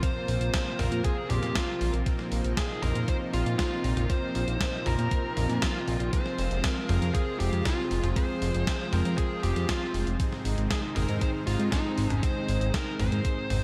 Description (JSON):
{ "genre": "synthwave", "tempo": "118 BPM", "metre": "4/4", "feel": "straight", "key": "unclear", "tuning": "A4 = 440 Hz", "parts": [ { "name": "dark smooth lead guitar", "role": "melody", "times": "0.0-13.6 s", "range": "Eb4 to C5", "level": "-36 LUFS", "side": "equal", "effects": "overdrive, tape echo" }, { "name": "lush unison pad", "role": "sustained chords", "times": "0.0-13.6 s", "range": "C3 to G5", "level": "-36 LUFS", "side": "equal", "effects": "chorus, sidechain pumping" }, { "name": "analog synth brass", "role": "stabs", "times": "0.0-13.6 s", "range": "Ab2 to C5", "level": "-38 LUFS", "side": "equal", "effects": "chorus, diffuse ambient delay" }, { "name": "electronic kick drum", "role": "drums", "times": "0.0-13.3 s", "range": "none", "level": "-31 LUFS", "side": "equal", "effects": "none" }, { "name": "gated 80s digital drum machine", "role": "drums", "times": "0.0-13.6 s", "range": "hi-hat, snare drum, toms", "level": "-36 LUFS", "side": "equal", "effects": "gated reverb, gated reverb snare" }, { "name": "fat analog bass", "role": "bass", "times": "0.3-13.6 s", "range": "F1 to Bb2", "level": "-30 LUFS", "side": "equal", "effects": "sidechain pumping" } ], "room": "moderate lush hall reverb, RT60 1.9 s", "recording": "dreamy mix soaked in reverb", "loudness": "-28 LUFS", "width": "mono", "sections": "0.0-13.6 A section", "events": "none", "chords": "0.0 Bbsus2; 6.1 Fm; 10.2 Ab", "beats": "| 0.03 0.54 1.04 1.55 | 2.06 2.57 3.08 3.59 | 4.09 4.60 5.11 5.62 | 6.13 6.64 7.15 7.66 | 8.16 8.67 9.18 9.69 | 10.20 10.71 11.21 11.72 | 12.23 12.74 13.25" }